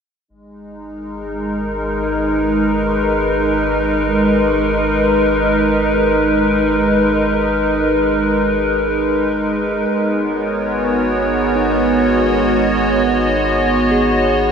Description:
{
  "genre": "ambient",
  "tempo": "free time",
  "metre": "none",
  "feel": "none",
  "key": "G# minor",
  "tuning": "A4 = 437 Hz",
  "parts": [
    { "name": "evolving wavetable pad", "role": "sustained chords", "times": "1.1-14.5 s", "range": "G#3 to D#5", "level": "-15 LUFS", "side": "equal", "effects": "chorus, built-in reverb" },
    { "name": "warm sub bass", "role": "bass", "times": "0.3-14.5 s", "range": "G#1", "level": "-27 LUFS", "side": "left 1 dB", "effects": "none" },
    { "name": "analog drone", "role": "drone", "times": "0.3-14.5 s", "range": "G#3 to D#4", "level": "-22 LUFS", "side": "right 1 dB", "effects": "chorus" },
    { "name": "mellow electric guitar", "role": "arpeggios", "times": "1.6-14.5 s", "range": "D#4 to C#6", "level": "-29 LUFS", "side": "left 1 dB", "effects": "none" }
  ],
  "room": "wet cathedral reverb, RT60 5.2 s",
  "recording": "dreamy mix soaked in reverb",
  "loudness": "-14 LUFS",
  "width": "side -6 dB against mid",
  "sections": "0.3-14.5 A section",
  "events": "none",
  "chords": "0.3 G#m; 9.9 G#m7",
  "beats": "free time"
}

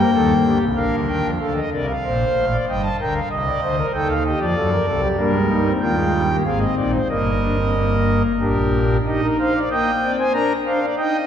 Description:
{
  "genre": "classical, baroque-style 4-part fugue for pipe organ",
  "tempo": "94 BPM",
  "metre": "3/4",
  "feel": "straight",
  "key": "Eb major from 5.2 s",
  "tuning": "A4 = 440 Hz",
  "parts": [
    { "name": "pipe organ, foundations", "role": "solo", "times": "0.0-11.3 s", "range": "G1 to Bb5", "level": "-17 LUFS", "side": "equal", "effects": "none" }
  ],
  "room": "wet church reverb, RT60 3.3 s",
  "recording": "recorded in a church or concert hall",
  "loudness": "-17 LUFS",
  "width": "side -9 dB against mid",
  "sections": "0.0-1.4 A section; 1.4-9.1 B section; 9.1-11.3 C section",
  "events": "none",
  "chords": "0.0 Gm; 0.8 Gm/Bb; 1.4 Bb; 2.7 Eb/G; 3.3 Adim/C; 4.6 D/F#; 5.2 Eb/G; 6.5 Fm7/Ab; 7.1 Eb/G; 8.4 Bb; 9.1 Eb; 10.3 Bb/D",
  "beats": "0.12 0.76 | 1.40 2.04 2.67 | 3.31 3.95 4.57 | 5.20 5.83 6.47 | 7.12 7.77 8.42 | 9.07 9.71 10.34 | 10.97"
}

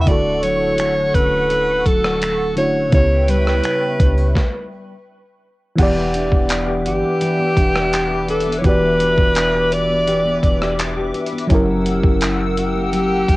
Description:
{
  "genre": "contemporary R&B",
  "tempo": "84 BPM",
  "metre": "4/4",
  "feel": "straight",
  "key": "unclear",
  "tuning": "A4 = 438 Hz",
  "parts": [
    { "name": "breathy alto saxophone", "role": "melody", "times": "0.0-13.4 s", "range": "G4 to E5", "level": "-18 LUFS", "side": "equal", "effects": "cassette tape" },
    { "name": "mellow FM electric piano", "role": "accompaniment", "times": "0.0-13.4 s", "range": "C#3 to F#5", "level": "-21 LUFS", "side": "equal", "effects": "chorus" },
    { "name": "hollow soft pad", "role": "sustained chords", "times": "0.0-13.4 s", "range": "A4 to E6", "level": "-28 LUFS", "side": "left 2 dB", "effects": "ensemble chorus" },
    { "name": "nylon-string guitar", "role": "arpeggios", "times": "0.0-13.4 s", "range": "C#3 to G4", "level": "-25 LUFS", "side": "left 3 dB", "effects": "tape echo" },
    { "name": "clean 808-style bass", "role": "bass", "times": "0.0-13.4 s", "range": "D1 to C#2", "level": "-22 LUFS", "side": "equal", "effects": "none" },
    { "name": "dusty soul sampler-style drum kit", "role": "drums", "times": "0.1-13.4 s", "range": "crash cymbal, finger snaps, handclaps, hi-hat, kick drum, rim click, snare drum", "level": "-19 LUFS", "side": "equal", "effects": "vintage 12-bit sampler grit, cassette tape" }
  ],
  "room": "light reverb",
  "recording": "home recording on cassette",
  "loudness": "-15 LUFS",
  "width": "side -20 dB against mid",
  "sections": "0.0-5.8 A section; 5.8-13.4 B section",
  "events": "stop 4.4-5.8",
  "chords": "0.1 Dmaj7; 2.9 C#m7b5; 5.8 Em7; 11.5 F#7b9",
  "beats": "| 0.07 0.78 1.50 2.21 | 2.93 3.64 4.36 5.07 | 5.78 6.50 7.21 7.93 | 8.64 9.36 10.07 10.78 | 11.50 12.21 12.93"
}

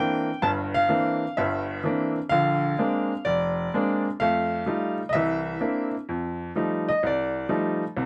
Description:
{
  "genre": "solo jazz",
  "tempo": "127 BPM",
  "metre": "4/4",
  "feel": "swing 66% on 8ths",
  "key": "unclear",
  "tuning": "A4 = 437 Hz",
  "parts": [
    { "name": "bright upright piano", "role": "solo", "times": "0.0-8.1 s", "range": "F1 to A5", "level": "-25 LUFS", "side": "equal", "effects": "none" }
  ],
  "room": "light reverb",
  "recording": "none",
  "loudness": "-25 LUFS",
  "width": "mono",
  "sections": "0.0-6.1 A section; 6.1-8.1 B section",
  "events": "upright piano solo 6.1-8.1",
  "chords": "0.0 C9; 2.3 Bb9; 4.2 F9; 5.1 C9; 6.1 F9",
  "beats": "| 0.43 0.90 1.37 1.84 | 2.31 2.79 3.26 3.73 | 4.20 4.67 5.14 5.61 | 6.08 6.55 7.03 7.50 | 7.97"
}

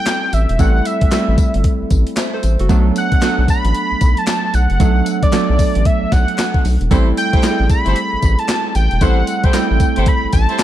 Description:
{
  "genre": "R&B, new jack swing",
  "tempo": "114 BPM",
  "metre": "4/4",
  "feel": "swing 61% on 16ths",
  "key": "A dorian",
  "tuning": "A4 = 440 Hz",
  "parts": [
    { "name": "octave-doubled lead", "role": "melody", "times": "0.0-10.6 s", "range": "D5 to B5", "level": "-20 LUFS", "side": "equal", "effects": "chorus" },
    { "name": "warm analog keys", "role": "accompaniment", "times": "0.0-10.6 s", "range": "F#3 to E5", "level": "-20 LUFS", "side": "right 3 dB", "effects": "chorus" },
    { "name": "gated 80s digital drum machine", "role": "drums", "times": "0.1-10.6 s", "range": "handclaps, hi-hat, kick drum, snare drum, tambourine", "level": "-16 LUFS", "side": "equal", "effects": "gated reverb, gated reverb snare" },
    { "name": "group handclap", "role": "percussion", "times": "0.1-10.6 s", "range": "none", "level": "barely audible", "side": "none", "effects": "none" },
    { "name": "round analog bass", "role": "bass", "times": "0.3-10.5 s", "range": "E1 to B1", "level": "-15 LUFS", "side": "equal", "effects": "none" },
    { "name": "clear horn section", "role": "stabs", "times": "6.9-10.6 s", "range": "E4 to C5", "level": "-25 LUFS", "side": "left 2 dB", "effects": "none" }
  ],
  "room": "little or no reverb",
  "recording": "dark, warm production",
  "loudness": "-13 LUFS",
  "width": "side -12 dB against mid",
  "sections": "0.0-10.6 A section",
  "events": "none",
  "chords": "0.0 Am7; 2.7 Bm7; 6.9 Am7",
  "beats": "0.07 | 0.59 1.12 1.64 2.17 | 2.70 3.22 3.75 4.28 | 4.80 5.33 5.85 6.38 | 6.91 7.43 7.96 8.49 | 9.01 9.54 10.06 10.59"
}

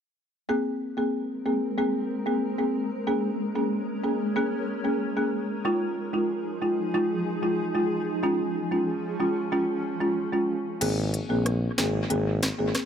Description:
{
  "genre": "dancehall",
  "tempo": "93 BPM",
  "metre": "4/4",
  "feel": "straight",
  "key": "unclear",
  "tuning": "A4 = 441 Hz",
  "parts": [
    { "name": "folk marimba with medium mallets", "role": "accompaniment", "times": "0.5-12.7 s", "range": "Ab3 to Ab4", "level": "-26 LUFS", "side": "equal", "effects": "none" },
    { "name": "granular cloud pad", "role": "sustained chords", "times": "1.3-10.8 s", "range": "F3 to Bb4", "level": "-32 LUFS", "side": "equal", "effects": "built-in reverb" },
    { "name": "warm tuba", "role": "bass", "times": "10.8-12.7 s", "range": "Ab1 to Bb1", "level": "-27 LUFS", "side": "equal", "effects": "none" },
    { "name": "island pop drum kit", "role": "drums", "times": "10.8-12.9 s", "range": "crash cymbal, hi-hat, rim click, snare drum", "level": "-30 LUFS", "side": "equal", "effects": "dub echo" }
  ],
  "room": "light reverb, small room ambience",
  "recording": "echo-heavy mix",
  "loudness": "-24 LUFS",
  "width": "side -8 dB against mid",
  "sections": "0.5-10.8 A section; 10.8-12.9 B section",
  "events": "kick muted 10.8-12.9",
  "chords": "0.5 Abadd9; 3.1 Bbm7; 5.7 Fm7; 8.2 Db; 10.8 Abadd9",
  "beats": "| 0.49 1.14 1.78 2.43 | 3.07 3.72 4.36 5.01 | 5.65 6.30 6.94 7.59 | 8.23 8.88 9.52 10.17 | 10.81 11.46 12.10 12.75"
}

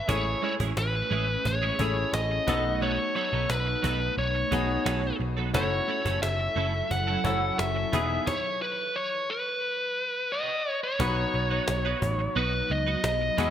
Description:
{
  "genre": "1980s-style pop",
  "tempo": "88 BPM",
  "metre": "4/4",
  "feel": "straight",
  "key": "B mixolydian",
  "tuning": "A4 = 438 Hz",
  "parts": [
    { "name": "biting lead guitar", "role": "melody", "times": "0.0-13.5 s", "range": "B4 to F#5", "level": "-28 LUFS", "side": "equal", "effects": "overdrive" },
    { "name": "bright concert grand piano", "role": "accompaniment", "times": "0.0-13.5 s", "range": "F#3 to B4", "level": "-33 LUFS", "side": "left 4 dB", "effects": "none" },
    { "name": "ethereal airy pad", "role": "sustained chords", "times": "0.0-13.5 s", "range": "F#3 to A4", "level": "-37 LUFS", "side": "equal", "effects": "ensemble chorus, built-in reverb" },
    { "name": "twelve-string electric guitar", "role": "riff", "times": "0.1-13.5 s", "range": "E3 to B4", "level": "-34 LUFS", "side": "right 7 dB", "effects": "ensemble chorus" },
    { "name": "vintage muted picked electric bass", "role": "bass", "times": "0.1-13.5 s", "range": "E1 to E2", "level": "-30 LUFS", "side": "equal", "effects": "none" },
    { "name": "cajon", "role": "drums", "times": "0.1-13.5 s", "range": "none", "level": "-34 LUFS", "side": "equal", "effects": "none" }
  ],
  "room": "moderate plate reverb, RT60 1.8 s",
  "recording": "bright 1980s-style digital production",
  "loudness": "-25 LUFS",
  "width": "side -10 dB against mid",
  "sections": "0.1-11.0 A section; 11.0-13.5 B section",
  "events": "stop 8.3-11.0",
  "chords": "0.1 Amaj7; 2.5 B7; 5.5 F#m7; 7.9 Emaj7; 11.0 B",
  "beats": "| 0.09 0.77 1.45 2.13 | 2.82 3.50 4.18 4.86 | 5.54 6.23 6.91 7.59 | 8.27 8.95 9.63 10.32 | 11.00 11.68 12.36 13.04"
}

